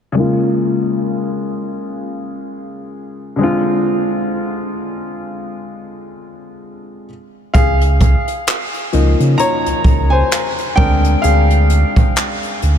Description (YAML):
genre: contemporary R&B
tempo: 65 BPM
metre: 4/4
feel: swing 58% on 16ths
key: unclear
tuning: A4 = 436 Hz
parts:
  - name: warm grand piano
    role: accompaniment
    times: 0.1-12.8 s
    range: Db3 to Bb5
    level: -17 LUFS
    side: left 2 dB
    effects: low-pass filter
  - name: sub bass with octave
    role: bass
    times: 7.5-12.8 s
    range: Db2 to Db3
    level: -13 LUFS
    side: equal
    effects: none
  - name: jazz brush drum kit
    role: drums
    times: 7.5-12.8 s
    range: handclaps, hi-hat, kick drum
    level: -16 LUFS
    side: equal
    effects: none
room: moderate huge ambient reverb, RT60 5.3 s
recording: dreamy mix soaked in reverb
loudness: -13 LUFS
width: side -8 dB against mid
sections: 0.2-7.5 A section; 7.5-12.8 B section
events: filter sweep on grand piano 0.2-7.5; grand piano solo 7.5-12.8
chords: 0.2 Db6; 3.4 Dm7b5; 7.1 N.C.; 7.5 Db6; 10.8 Bb9/D